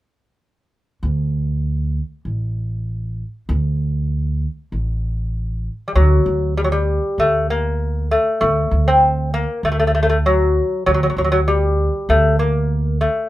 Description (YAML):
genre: Persian modal ensemble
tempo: 98 BPM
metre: 4/4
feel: straight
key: D dastgah homayun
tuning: A4 = 443 Hz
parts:
  - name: upright bass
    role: bass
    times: 1.0-13.0 s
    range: A1 to D2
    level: -19 LUFS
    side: right 1 dB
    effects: none
  - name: lute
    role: melody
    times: 5.9-13.3 s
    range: F#3 to C4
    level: -17 LUFS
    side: left 1 dB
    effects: none
room: light reverb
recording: band playing live in one room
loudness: -16 LUFS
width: side -15 dB against mid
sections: 1.0-5.9 A section; 5.9-13.3 B section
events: none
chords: none